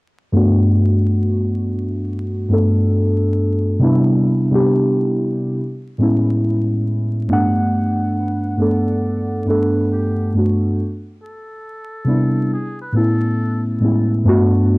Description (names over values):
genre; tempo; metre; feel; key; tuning
hip hop; 69 BPM; 4/4; swing 65% on 16ths; G major; A4 = 440 Hz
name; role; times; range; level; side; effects
muted felt-like synth keys; accompaniment; 0.3-14.8 s; G2 to F#5; -15 LUFS; equal; chorus, cassette tape, low-pass filter
trumpet with metal mute; melody; 7.3-13.6 s; G4 to D5; -35 LUFS; left 1 dB; low-pass filter, cassette tape, tape echo
room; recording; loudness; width
moderate booth ambience, RT60 0.3 s; home recording on cassette, vinyl crackle; -15 LUFS; side -24 dB against mid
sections
0.3-7.3 A section; 7.3-14.8 B section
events
filter sweep on synth keys 0.3-7.3; filter sweep 7.3-14.8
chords
0.3 Gmaj9; 3.8 Cmaj9; 5.6 Amaj9; 7.3 Gmaj9; 10.8 Cmaj9; 12.5 Amaj9; 14.3 Gmaj9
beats
| 0.34 1.21 2.08 2.95 | 3.82 4.69 5.56 6.43 | 7.30 8.17 9.04 9.91 | 10.78 11.65 12.52 13.39 | 14.26